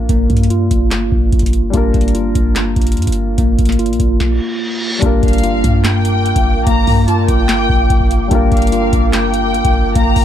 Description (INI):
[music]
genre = hip hop, trap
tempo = 146 BPM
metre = 4/4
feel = half-time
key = G minor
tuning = A4 = 436 Hz
[part]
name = dark concert grand piano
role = accompaniment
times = 0.0-10.2 s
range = G3 to Bb4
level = -24 LUFS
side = left 6 dB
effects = none
[part]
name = mellow tine electric piano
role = arpeggios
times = 0.0-10.2 s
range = Bb3 to F4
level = -18 LUFS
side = right 1 dB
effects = medium stereo tremolo, tape echo
[part]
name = clean 808-style bass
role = bass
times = 0.0-10.2 s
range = G1 to G2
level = -17 LUFS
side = equal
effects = none
[part]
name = booming analog drum machine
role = drums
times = 0.1-10.2 s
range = handclaps, hi-hat, kick drum, snare drum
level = -15 LUFS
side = equal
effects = none
[part]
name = reverse cymbal and impact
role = sound effects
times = 4.4-6.7 s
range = none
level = -26 LUFS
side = right 1 dB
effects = none
[part]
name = glassy FM pad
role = sustained chords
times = 5.4-10.2 s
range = Bb4 to D6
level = -22 LUFS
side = left 1 dB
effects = ensemble chorus, built-in reverb, phaser
[part]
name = dark studio violin section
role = second line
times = 5.2-10.2 s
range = F5 to Bb5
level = -20 LUFS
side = left 3 dB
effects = tape echo
[sound]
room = little or no reverb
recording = dark, warm production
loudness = -11 LUFS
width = side -10 dB against mid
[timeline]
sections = 0.0-5.0 A section; 5.0-10.2 B section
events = stop 4.2-5.0; reverse cymbal 4.4-5.0; impact 5.0-6.7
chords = 0.0 Gm7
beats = | 0.09 0.50 0.91 1.32 | 1.74 2.15 2.56 2.97 | 3.38 3.79 4.20 4.61 | 5.02 5.43 5.85 6.26 | 6.67 7.08 7.49 7.90 | 8.31 8.72 9.13 9.54 | 9.96